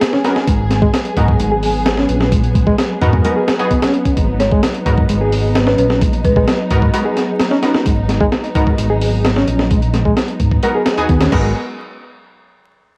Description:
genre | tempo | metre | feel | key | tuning
breakbeat, breaks | 130 BPM | 4/4 | straight | G# minor | A4 = 441 Hz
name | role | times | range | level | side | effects
dark studio string section | sustained chords | 0.0-11.5 s | F#3 to G#4 | -24 LUFS | equal | sidechain pumping, cassette tape
reed electric piano | riff | 0.0-11.5 s | G#3 to G#4 | -21 LUFS | equal | fast tremolo, cassette tape, tape echo
orchestra-hit-like synth stab | stabs | 0.0-11.5 s | B3 to A#4 | -23 LUFS | equal | built-in reverb, cassette tape, tape echo
breakbeat sampler-style drum kit | drums | 0.0-11.4 s | crash cymbal, hi-hat, kick drum, snare drum | -19 LUFS | equal | cassette tape
dark detuned saw bass | bass | 0.5-11.5 s | G#1 to G#2 | -20 LUFS | equal | none
folk marimba with medium mallets | melody | 4.4-6.4 s | B4 to C#5 | -22 LUFS | equal | small speaker sound, cassette tape
room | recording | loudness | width
moderate booth ambience, RT60 0.2 s | home recording on cassette, vinyl crackle | -15 LUFS | mono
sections
0.0-11.6 A section; 11.6-13.0 B section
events
drop 0.0-11.6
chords
0.0 G#m7; 11.6 N.C.

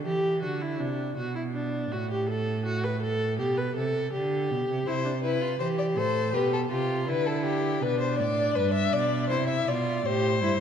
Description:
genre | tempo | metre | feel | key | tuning
classical, baroque-style fugue for string quartet | 81 BPM | 4/4 | straight | unclear | A4 = 440 Hz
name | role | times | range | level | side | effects
rich cello | bass | 0.0-10.6 s | G2 to E3 | -30 LUFS | right 4 dB | none
rich viola | accompaniment | 0.1-10.6 s | D4 to B4 | -29 LUFS | equal | none
warm violin | second line | 4.9-10.6 s | G4 to E5 | -27 LUFS | left 5 dB | none
room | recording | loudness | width
moderate concert hall reverb, RT60 2.3 s | dark, warm production | -25 LUFS | side -8 dB against mid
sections
0.0-10.6 A section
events
none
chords
0.4 D; 1.9 Gmaj9/A (rootless); 3.4 G/B; 4.9 C; 6.3 G/B; 7.8 G; 9.3 C

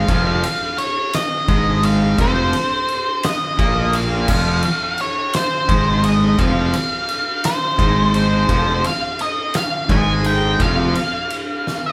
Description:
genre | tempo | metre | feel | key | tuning
quiet-loud alternative rock | 57 BPM (dotted quarters) | 6/8 | straight | F minor | A4 = 436 Hz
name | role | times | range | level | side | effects
octave-fuzz lead guitar | melody | 0.0-11.9 s | C5 to Ab5 | -22 LUFS | equal | distortion
cranked stack guitar | riff | 0.0-10.9 s | F2 to Bb3 | -26 LUFS | equal | overdrive
tight distorted guitar | riff | 0.0-10.9 s | F2 to Bb3 | -24 LUFS | equal | distortion
fuzz fingered electric bass | bass | 0.0-10.9 s | F1 to Bb1 | -24 LUFS | equal | overdrive
oversized low-tuned drum kit | drums | 0.1-11.8 s | crash cymbal, kick drum, ride cymbal, snare drum | -25 LUFS | equal | none
room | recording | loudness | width
moderate large studio reverb, RT60 1.2 s | band playing live in one room | -18 LUFS | mono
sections
0.0-11.9 A section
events
drum fill 11.7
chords
0.0 Fm

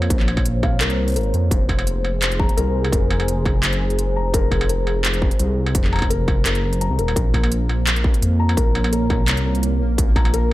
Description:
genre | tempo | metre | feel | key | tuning
half-time drum and bass | 170 BPM | 4/4 | half-time | Bb minor | A4 = 439 Hz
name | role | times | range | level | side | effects
dark analog pad | sustained chords | 0.0-10.5 s | Bb3 to Db5 | -27 LUFS | equal | chorus, sidechain pumping
felt-muted upright piano | arpeggios | 0.0-10.5 s | Bb4 to Bb5 | -28 LUFS | left 4 dB | vintage 12-bit sampler grit, low-pass filter, dub echo
dark detuned saw bass | bass | 0.0-10.5 s | Eb1 to F2 | -20 LUFS | equal | none
industrial drum kit | drums | 0.0-10.4 s | handclaps, hi-hat, struck metal | -24 LUFS | right 1 dB | overdrive
electronic kick drum | drums | 0.1-10.2 s | none | -20 LUFS | equal | distortion, overdrive
pulsing gated texture | texture | 7.3-10.5 s | Bb3 to Bb4 | -31 LUFS | right 3 dB | chorus, built-in reverb
room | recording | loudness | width
little or no reverb | none | -17 LUFS | side -16 dB against mid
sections
0.0-10.5 A section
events
kick drops out 6.8-7.2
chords
0.0 Bbmadd9; 1.5 Fm; 7.2 Bbmadd9

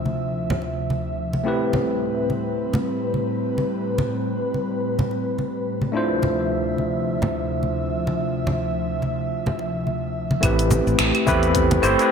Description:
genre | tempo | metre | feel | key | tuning
sunset chillout | 107 BPM | 4/4 | swing 58% on 16ths | A minor | A4 = 439 Hz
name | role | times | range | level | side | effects
overdriven tine electric piano | accompaniment | 0.0-12.1 s | A3 to C5 | -24 LUFS | equal | auto-pan, digital delay, shimmer reverb
airy breathy pad | sustained chords | 0.0-12.1 s | D2 to E5 | -25 LUFS | equal | chorus, shimmer reverb
bongos and congas | percussion | 0.1-11.8 s | none | -24 LUFS | equal | none
modern bright fingered electric bass | bass | 10.4-11.9 s | G1 to E2 | -23 LUFS | equal | none
deep house drum kit | drums | 10.4-12.1 s | claves, finger snaps, hi-hat, shaker | -24 LUFS | right 2 dB | low-pass filter on hats, low-pass filter on perc, low-pass filter on snare, gated reverb
electronic kick drum | drums | 10.4-11.7 s | none | -25 LUFS | equal | none
room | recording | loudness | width
moderate plate reverb, RT60 1.9 s, digital ambience | bright 1980s-style digital production | -20 LUFS | side -6 dB against mid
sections
0.0-10.4 A section; 10.4-12.1 B section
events
filter sweep on analog synth pad 0.0-10.4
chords
0.0 Dm9; 1.5 Am9; 5.9 Dm9; 10.4 Am9

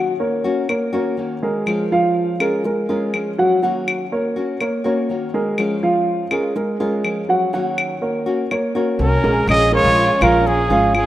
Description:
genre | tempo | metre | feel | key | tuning
latin, Cuban son and guajira | 123 BPM | 4/4 | straight | Bb minor | A4 = 440 Hz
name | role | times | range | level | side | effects
nylon-string guitar | accompaniment | 0.0-11.1 s | Eb3 to Gb4 | -25 LUFS | left 3 dB | none
dark concert grand piano | arpeggios | 0.0-11.1 s | F3 to Gb5 | -19 LUFS | right 1 dB | none
upright bass | bass | 0.0-11.1 s | Ab1 to Eb2 | -20 LUFS | equal | none
claves | percussion | 0.7-11.1 s | none | -26 LUFS | left 3 dB | none
breathy trumpet | melody | 9.0-11.1 s | Ab4 to Eb5 | -16 LUFS | right 1 dB | none
warm studio violin section | second line | 9.0-11.1 s | Db4 to Ab4 | -24 LUFS | left 2 dB | none
room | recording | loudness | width
moderate lush hall reverb, RT60 2.7 s | rough home demo mix | -16 LUFS | side -14 dB against mid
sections
0.0-9.5 A section; 9.5-11.1 B section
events
none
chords
0.0 Ebm7; 1.7 Bbm7; 3.6 Ebm7; 5.6 Bbm7; 7.5 Ebm7; 9.5 Bbm7

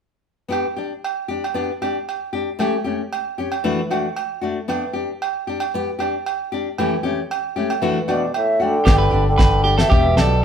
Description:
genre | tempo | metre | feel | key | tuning
highlife guitar band | 115 BPM | 4/4 | straight | G major | A4 = 441 Hz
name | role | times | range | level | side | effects
nylon-string guitar | accompaniment | 0.5-10.3 s | E3 to G4 | -23 LUFS | left 4 dB | none
agogo bells | percussion | 0.5-10.3 s | none | -26 LUFS | right 8 dB | none
mellow baroque flute | melody | 8.1-10.4 s | D5 to G5 | -21 LUFS | equal | none
clear trombone | second line | 8.1-10.4 s | A2 to D3 | -23 LUFS | right 3 dB | none
electric guitar at the edge of break-up | arpeggios | 8.9-10.4 s | G4 to B4 | -21 LUFS | right 2 dB | none
fingered electric bass | bass | 8.9-10.4 s | E1 to B1 | -18 LUFS | equal | none
damped 70s drum kit | drums | 8.9-10.3 s | kick drum, snare drum | -17 LUFS | equal | none
room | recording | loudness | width
wet studio reverb, RT60 0.9 s | band playing live in one room | -18 LUFS | side -8 dB against mid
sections
0.5-8.9 A section; 8.9-10.4 B section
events
none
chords
0.5 G; 2.6 A7; 3.6 Dadd9; 4.7 G; 6.8 A7; 7.8 Dadd9; 8.9 G; 9.9 Em7

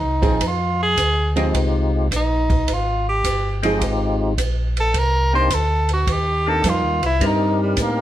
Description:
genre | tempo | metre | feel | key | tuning
soul jazz organ trio | 106 BPM | 4/4 | swing 68% on 8ths | unclear | A4 = 445 Hz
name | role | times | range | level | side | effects
clear tenor saxophone | melody | 0.0-8.0 s | G3 to C5 | -20 LUFS | right 1 dB | none
mellow tonewheel organ | bass | 0.0-8.0 s | G1 to A2 | -21 LUFS | equal | slow rotary speaker
archtop guitar, miked and amplified | accompaniment | 0.2-7.0 s | F3 to Ab4 | -23 LUFS | right 4 dB | none
compact cocktail drum kit | drums | 0.2-8.0 s | hi-hat, kick drum, ride cymbal | -26 LUFS | right 1 dB | none
percussive tonewheel organ | melody | 1.4-8.0 s | Ab3 to Bb4 | -22 LUFS | left 3 dB | slow rotary speaker, chorus vibrato
room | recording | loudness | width
moderate studio reverb, RT60 0.6 s | heard from further back in the room | -17 LUFS | side -12 dB against mid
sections
0.0-8.0 A section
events
tenor saxophone solo 0.0-8.0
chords
0.4 Fm7; 5.0 Cm7

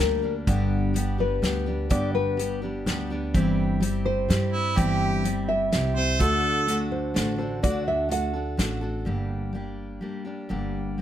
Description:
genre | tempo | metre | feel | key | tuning
acoustic folk duo or small band | 126 BPM | 3/4 | straight | unclear | A4 = 437 Hz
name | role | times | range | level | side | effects
nylon-string guitar | melody | 0.0-8.8 s | Bb4 to F#5 | -27 LUFS | left 2 dB | none
picked steel-string acoustic guitar | accompaniment | 0.0-11.0 s | G2 to A4 | -27 LUFS | left 1 dB | none
upright bass | bass | 0.0-11.0 s | G1 to G2 | -29 LUFS | right 1 dB | none
loose indie drum kit | drums | 0.0-8.7 s | hi-hat, kick drum, snare drum | -28 LUFS | equal | none
warm harmonica | second line | 4.5-6.8 s | E4 to C5 | -26 LUFS | right 2 dB | none
room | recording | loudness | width
little or no reverb | close, detailed microphones | -23 LUFS | side -11 dB against mid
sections
0.0-9.1 A section; 9.1-11.0 B section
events
none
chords
0.5 G; 3.3 C/G; 6.2 D; 9.1 Gm

